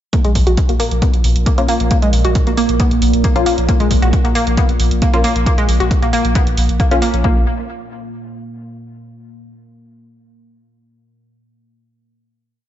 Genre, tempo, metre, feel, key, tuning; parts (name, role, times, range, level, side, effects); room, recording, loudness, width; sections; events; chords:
driving peak-time techno; 135 BPM; 4/4; straight; Bb minor; A4 = 440 Hz
analog pluck; riff; 0.1-7.4 s; Ab3 to Gb4; -20 LUFS; equal; chorus, sidechain pumping, ping-pong delay
deep dark ambient pad; drone; 0.8-7.3 s; Bb2 to Bb3; -24 LUFS; right 2 dB; chorus, built-in reverb, sidechain pumping
electronic hi-hat; drums; 0.1-7.2 s; -27 LUFS; right 4 dB
electronic kick drum; drums; 0.1-7.3 s; -16 LUFS; equal
saturated sub bass; bass; 0.2-7.4 s; Bb1; -18 LUFS; equal; sidechain pumping, low-pass filter
filtered dub chord stab; stabs; 1.6-7.4 s; Bb3 to F4; -21 LUFS; left 3 dB; phaser, sidechain pumping, diffuse ambient delay
light reverb; nothing above 7.8 kHz; -12 LUFS; side -11 dB against mid
0.1-7.2 groove; 7.2-9.0 final chord
filter sweep on synth arpeggio sound 0.1-7.2
0.1 Bbm; 7.2 N.C.